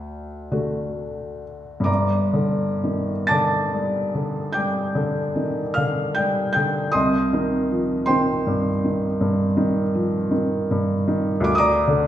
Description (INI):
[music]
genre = classical, romantic nocturne for solo piano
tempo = 40-55 BPM (dotted quarters)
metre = 12/8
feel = rubato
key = G minor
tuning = A4 = 441 Hz
[part]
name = felt-muted upright piano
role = solo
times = 0.0-12.1 s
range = G1 to A6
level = -20 LUFS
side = equal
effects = none
[sound]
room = wet recital hall reverb, RT60 1.4 s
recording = heard from further back in the room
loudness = -19 LUFS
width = side -11 dB against mid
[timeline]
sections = 0.0-1.9 A section; 1.9-12.1 B section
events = none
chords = 0.0 D; 1.9 Gm; 6.9 Cm; 11.5 Gm/D (rootless)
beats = 0.52 | 1.88 3.30 4.55 5.77 | 6.95 8.09 9.21 10.32 | 11.48